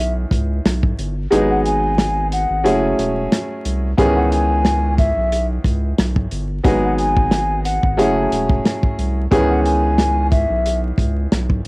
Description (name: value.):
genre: hip hop, boom-bap hip-hop.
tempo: 90 BPM.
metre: 4/4.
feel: swing 54% on 16ths.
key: C# minor.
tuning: A4 = 439 Hz.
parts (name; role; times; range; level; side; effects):
mellow hollow silver concert flute; melody; 0.0-10.8 s; E5 to G#5; -21 LUFS; left 1 dB; high-pass filter, low-pass filter, cassette tape, tape echo.
warm upright piano; accompaniment; 0.0-11.7 s; D#3 to G#4; -19 LUFS; equal; cassette tape, high-pass filter, low-pass filter.
saturated sub bass; bass; 0.0-11.7 s; E1 to C#2; -20 LUFS; equal; none.
warm soul drum kit; drums; 0.3-11.7 s; hi-hat, kick drum, rim click, snare drum; -18 LUFS; equal; cassette tape.
room: small room reverb.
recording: home recording on cassette, vinyl crackle.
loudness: -15 LUFS.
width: side -25 dB against mid.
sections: 0.0-11.7 A section.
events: kick muted 1.3-4.0.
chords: 0.0 C#m7; 1.3 G#m7; 2.6 F#m7; 4.0 C#m7; 6.6 G#m7; 8.0 F#m7; 9.3 C#m7.